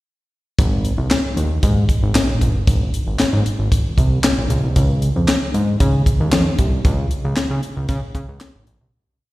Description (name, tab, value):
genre	early-eighties boogie funk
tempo	115 BPM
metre	4/4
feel	straight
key	Ab major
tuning	A4 = 437 Hz
part	fat analog bass	bass	0.6-8.9 s	G1 to Db3	-18 LUFS	equal	none
part	tight funk drum kit	drums	0.6-8.8 s	handclaps, hi-hat, kick drum, snare drum	-17 LUFS	equal	none
room	light reverb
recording	live gig heard through the venue's PA, recital hall reverb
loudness	-15 LUFS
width	side -18 dB against mid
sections	0.6-8.9 breakdown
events	fade-out 6.8-8.9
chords	none